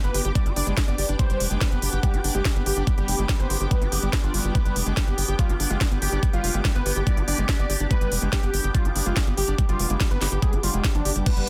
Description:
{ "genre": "psychedelic trance", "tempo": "143 BPM", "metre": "4/4", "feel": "straight", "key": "G major", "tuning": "A4 = 440 Hz", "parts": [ { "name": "unison lead", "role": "melody", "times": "0.0-11.5 s", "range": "D4 to D5", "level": "-34 LUFS", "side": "equal", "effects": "phaser, sidechain pumping, dub echo" }, { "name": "overtone-sweeping drone", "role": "sustained chords", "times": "0.1-11.5 s", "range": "B3 to B4", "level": "-38 LUFS", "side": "equal", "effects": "chorus, built-in reverb, sidechain pumping" }, { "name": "overdriven acid bass", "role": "riff", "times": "0.0-11.5 s", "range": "F3 to G4", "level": "-35 LUFS", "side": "equal", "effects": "distortion, sidechain pumping, dub echo" }, { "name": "tight sequencer bass", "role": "bass", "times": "0.0-11.4 s", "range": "F1 to G1", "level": "-28 LUFS", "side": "equal", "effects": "none" }, { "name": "drum and bass drum kit", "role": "drums", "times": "0.0-11.5 s", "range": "crash cymbal, hi-hat, snare drum", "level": "-30 LUFS", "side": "equal", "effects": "none" }, { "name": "warm chamber string section", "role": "texture", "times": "0.0-11.5 s", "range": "D4 to D6", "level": "-38 LUFS", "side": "equal", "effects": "sidechain pumping" }, { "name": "electronic kick drum", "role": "drums", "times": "0.4-11.3 s", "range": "none", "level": "-25 LUFS", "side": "equal", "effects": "none" } ], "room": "light reverb", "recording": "dense, heavily limited modern master", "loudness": "-23 LUFS", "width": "mono", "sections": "0.0-11.5 A section", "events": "none", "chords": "0.0 G5" }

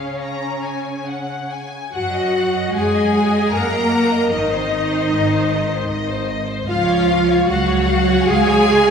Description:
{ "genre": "classical, slow romantic movement for string orchestra", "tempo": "76 BPM", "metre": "3/4", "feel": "rubato", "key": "Db major", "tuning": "A4 = 440 Hz", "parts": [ { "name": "clear symphonic violin section", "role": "melody", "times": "0.0-8.9 s", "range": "C5 to Bb5", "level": "-25 LUFS", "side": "left 4 dB", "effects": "none" }, { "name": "warm symphonic violin section", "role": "second line", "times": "0.0-8.9 s", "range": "Db5 to Bb5", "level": "-24 LUFS", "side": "left 3 dB", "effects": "none" }, { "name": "rich symphonic viola section", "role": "accompaniment", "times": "0.0-8.9 s", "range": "Db4 to Bb4", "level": "-19 LUFS", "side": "equal", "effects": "none" }, { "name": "rich symphonic cello section", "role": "bass", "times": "0.0-8.9 s", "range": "Db3 to Bb3", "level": "-22 LUFS", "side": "right 2 dB", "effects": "none" }, { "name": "rich symphonic double bass section", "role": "bass", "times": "0.0-8.9 s", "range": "Ab1 to Gb2", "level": "-24 LUFS", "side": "right 2 dB", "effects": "none" } ], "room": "wet recital hall reverb, RT60 1.7 s", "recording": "recorded in a church or concert hall", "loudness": "-16 LUFS", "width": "side -6 dB against mid", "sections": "0.0-1.9 A section; 1.9-8.9 B section", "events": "none", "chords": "0.0 Db5; 1.9 Ebm/Gb; 4.3 Ab; 6.7 Db" }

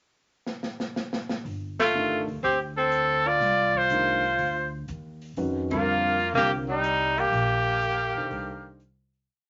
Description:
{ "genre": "modal jazz", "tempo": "122 BPM", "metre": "4/4", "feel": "swing 69% on 8ths", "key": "G minor", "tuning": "A4 = 441 Hz", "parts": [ { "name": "open jazz drum kit", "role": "drums", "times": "0.5-9.2 s", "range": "hi-hat, kick drum, ride cymbal, snare drum", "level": "-38 LUFS", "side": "equal", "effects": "none" }, { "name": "upright bass", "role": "bass", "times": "1.4-9.2 s", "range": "E1 to F2", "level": "-36 LUFS", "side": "equal", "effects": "none" }, { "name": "clear trumpet", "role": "melody", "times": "1.8-8.8 s", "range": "Eb4 to D5", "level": "-27 LUFS", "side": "equal", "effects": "none" }, { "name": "mellow tenor saxophone", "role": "second line", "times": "1.8-8.8 s", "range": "G3 to F4", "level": "-30 LUFS", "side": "equal", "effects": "none" }, { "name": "dark baby grand piano", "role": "accompaniment", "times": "1.9-8.8 s", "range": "D3 to C5", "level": "-34 LUFS", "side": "equal", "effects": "none" } ], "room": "moderate small room reverb, RT60 0.5 s", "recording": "nothing above 7.6 kHz", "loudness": "-26 LUFS", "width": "mono", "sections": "0.0-1.5 pickup bar; 1.5-9.3 A section", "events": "drum fill 0.5-1.5; band accent 1.7, 5.6; fade-out 7.3-9.3", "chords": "0.0 N.C.; 1.5 G9sus4; 5.4 F9sus4" }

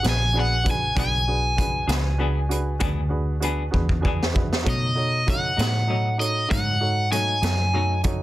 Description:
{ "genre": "slow blues", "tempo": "65 BPM (dotted quarters)", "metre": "12/8", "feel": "straight", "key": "E mixolydian", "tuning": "A4 = 440 Hz", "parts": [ { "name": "cranked stack guitar", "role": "melody", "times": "0.0-8.0 s", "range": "D#5 to G#5", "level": "-25 LUFS", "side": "equal", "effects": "overdrive" }, { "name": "warm upright piano", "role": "accompaniment", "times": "0.0-8.2 s", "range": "D4 to G#5", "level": "-31 LUFS", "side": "right 4 dB", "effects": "none" }, { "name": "vintage muted fingered electric bass", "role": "bass", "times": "0.0-8.2 s", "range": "A#1 to B2", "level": "-24 LUFS", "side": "equal", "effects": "none" }, { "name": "raw garage drum kit", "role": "drums", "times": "0.0-8.2 s", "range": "hi-hat, kick drum, snare drum", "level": "-26 LUFS", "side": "equal", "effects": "none" }, { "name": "clean electric guitar", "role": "accompaniment", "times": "0.4-7.9 s", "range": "B2 to G#4", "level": "-31 LUFS", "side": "left 5 dB", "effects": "tremolo" } ], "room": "little or no reverb", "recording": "dense, heavily limited modern master", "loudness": "-20 LUFS", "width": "side -16 dB against mid", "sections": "0.0-8.2 A section", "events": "drum fill 3.7-4.7; upright piano fill 3.7-4.7", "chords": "0.0 E7; 4.7 B7" }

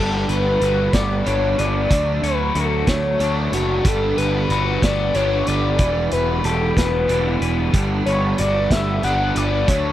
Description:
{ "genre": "indie rock", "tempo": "62 BPM (dotted quarters)", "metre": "6/8", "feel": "straight", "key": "G lydian", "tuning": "A4 = 440 Hz", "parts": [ { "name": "overdriven synth lead", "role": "melody", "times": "0.0-9.9 s", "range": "F#4 to F#5", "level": "-22 LUFS", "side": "left 2 dB", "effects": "distortion, chorus, slapback echo" }, { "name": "crunchy overdriven guitar", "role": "riff", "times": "0.0-9.9 s", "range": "D3 to C#5", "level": "-25 LUFS", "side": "left 7 dB", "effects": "phaser" }, { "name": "overdriven semi-hollow guitar", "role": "riff", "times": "0.0-9.9 s", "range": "G2 to E4", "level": "-26 LUFS", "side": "right 7 dB", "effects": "analog chorus, slapback echo" }, { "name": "fuzz picked electric bass", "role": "bass", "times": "0.0-9.9 s", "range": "E1 to D2", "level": "-22 LUFS", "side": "right 1 dB", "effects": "overdrive" }, { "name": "vintage drum kit", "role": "drums", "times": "0.3-9.8 s", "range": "hi-hat, kick drum, snare drum", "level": "-22 LUFS", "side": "right 1 dB", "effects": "none" } ], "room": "little or no reverb", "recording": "dry, close 1970s-style studio recording", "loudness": "-17 LUFS", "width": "side -12 dB against mid", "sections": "0.0-9.9 A section", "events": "none", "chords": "0.0 Gmaj7; 1.9 Dmaj7; 3.8 Gmaj7; 5.8 Em7; 7.7 Gmaj7" }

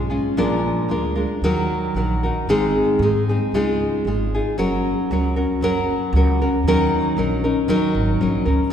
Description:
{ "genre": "mexican folk, mariachi", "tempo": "115 BPM", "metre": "2/4", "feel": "straight", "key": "Db major, F# major from 4.6 s", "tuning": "A4 = 438 Hz", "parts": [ { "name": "nylon-string guitar", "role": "accompaniment", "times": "0.0-8.7 s", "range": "Ab2 to Bb4", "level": "-19 LUFS", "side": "equal", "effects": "none" }, { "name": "upright bass", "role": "bass", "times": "0.0-8.7 s", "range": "F#1 to Ab2", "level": "-23 LUFS", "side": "equal", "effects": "none" } ], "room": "wet concert hall reverb, RT60 2.4 s", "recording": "recorded in a church or concert hall", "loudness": "-17 LUFS", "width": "side -8 dB against mid", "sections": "0.0-4.6 A section; 4.6-8.7 B section", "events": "none", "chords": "0.4 Bb7; 1.4 Ebm; 2.5 Ab; 3.5 Dbadd9; 4.6 F#; 6.7 D#m7" }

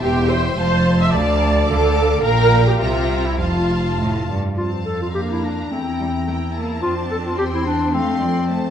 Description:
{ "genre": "quick classical-period movement for symphony orchestra", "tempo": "108 BPM", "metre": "2/4", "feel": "rubato", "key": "F major", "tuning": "A4 = 441 Hz", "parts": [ { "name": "clear studio violin section", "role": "melody", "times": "0.0-8.7 s", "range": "G5 to D6", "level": "-30 LUFS", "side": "left 5 dB", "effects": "none" }, { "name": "rich studio violin section", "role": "second line", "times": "0.0-8.7 s", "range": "C5 to C6", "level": "-29 LUFS", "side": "left 3 dB", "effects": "none" }, { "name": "rich studio viola section", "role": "accompaniment", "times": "0.0-8.7 s", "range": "A3 to E5", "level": "-22 LUFS", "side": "equal", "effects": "none" }, { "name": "clear studio double bass section", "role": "bass", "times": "0.0-8.7 s", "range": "E1 to F2", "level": "-22 LUFS", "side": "right 2 dB", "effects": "none" }, { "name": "rich studio cello section", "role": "bass", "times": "0.0-8.6 s", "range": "D2 to C4", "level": "-23 LUFS", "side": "right 1 dB", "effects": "none" }, { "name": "warm clarinet", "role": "second line", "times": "4.6-8.7 s", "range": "C4 to A4", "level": "-22 LUFS", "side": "left 3 dB", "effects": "none" } ], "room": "moderate scoring stage reverb, RT60 1.9 s", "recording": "dark, warm production", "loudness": "-16 LUFS", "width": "side -9 dB against mid", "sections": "0.0-4.6 A section; 4.6-8.7 A section", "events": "none", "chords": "0.0 C/E; 0.6 F; 1.1 Dm; 2.2 Gm7/Bb; 2.8 C7; 3.4 F; 5.1 Bb/F; 5.7 C7/E; 6.8 F; 7.4 C/E; 7.9 F" }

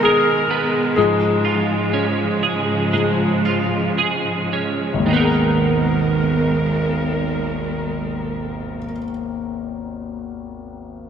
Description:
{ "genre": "pop", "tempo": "53-66 BPM", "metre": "4/4", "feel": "straight", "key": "G# minor", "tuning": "A4 = 440 Hz", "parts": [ { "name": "warm concert grand piano", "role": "accompaniment", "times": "0.0-11.1 s", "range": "G#1 to A#4", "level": "-21 LUFS", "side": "left 3 dB", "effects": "lush chorus" }, { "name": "warm studio string section", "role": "sustained chords", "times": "0.0-8.9 s", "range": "G#2 to A#4", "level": "-23 LUFS", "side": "equal", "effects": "none" }, { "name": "twelve-string electric guitar", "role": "arpeggios", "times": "0.0-9.0 s", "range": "G#2 to A#4", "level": "-21 LUFS", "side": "right 6 dB", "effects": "analog chorus" } ], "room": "moderate lush hall reverb, RT60 3.0 s", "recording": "bright 1980s-style digital production", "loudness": "-17 LUFS", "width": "side -8 dB against mid", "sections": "0.0-5.1 A section; 5.1-9.7 B section", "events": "slowing down 0.0-5.1; grand piano solo 0.0-5.1", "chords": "0.0 G#madd9; 1.0 C#/G#; 5.1 G#madd9" }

